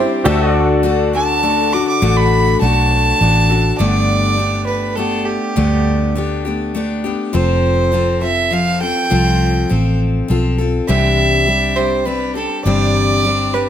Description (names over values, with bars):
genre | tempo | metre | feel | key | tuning
honky-tonk and classic country | 102 BPM | 3/4 | straight | G major | A4 = 441 Hz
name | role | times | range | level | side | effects
clear fiddle | second line | 0.0-13.7 s | G4 to D6 | -18 LUFS | right 3 dB | none
bright upright piano | accompaniment | 0.0-3.8 s | E4 to D5 | -22 LUFS | right 4 dB | none
picked steel-string acoustic guitar | accompaniment | 0.0-13.7 s | G2 to A4 | -18 LUFS | left 4 dB | none
pedal steel guitar | sustained chords | 0.0-3.8 s | F#4 to D5 | -23 LUFS | left 1 dB | none
vintage muted fingered electric bass | bass | 0.0-13.7 s | F1 to D2 | -18 LUFS | equal | none
room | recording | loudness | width
light reverb | none | -13 LUFS | side -10 dB against mid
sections
0.0-3.8 A section; 3.8-13.7 B section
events
fiddle solo 0.0-3.8, 3.8-13.7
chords
0.3 D; 3.8 Gadd9; 7.3 F; 10.9 Cadd9